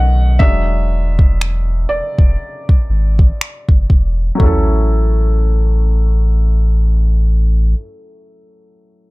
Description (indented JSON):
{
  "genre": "contemporary R&B",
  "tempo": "60 BPM",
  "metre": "4/4",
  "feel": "swing 58% on 16ths",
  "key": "A major",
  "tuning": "A4 = 441 Hz",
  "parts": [
    { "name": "felt-muted upright piano", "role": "accompaniment", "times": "0.0-9.1 s", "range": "D#3 to F#5", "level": "-22 LUFS", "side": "equal", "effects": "low-pass filter" },
    { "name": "sub bass with octave", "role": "bass", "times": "0.0-7.7 s", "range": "E1 to B1", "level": "-13 LUFS", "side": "equal", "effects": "none" },
    { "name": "smooth R&B drum kit", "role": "drums", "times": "0.4-4.7 s", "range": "finger snaps, kick drum, toms", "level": "-11 LUFS", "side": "equal", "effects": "none" }
  ],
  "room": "little or no reverb",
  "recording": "none",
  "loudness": "-12 LUFS",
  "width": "side -22 dB against mid",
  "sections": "0.0-4.4 A section; 4.4-8.4 B section",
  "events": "felt piano solo 0.0-4.4; filter sweep on felt piano 0.0-4.4",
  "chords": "0.4 E7; 4.4 A6",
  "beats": "| 0.40 1.40 2.40 3.40 | 4.40 5.40 6.40 7.40"
}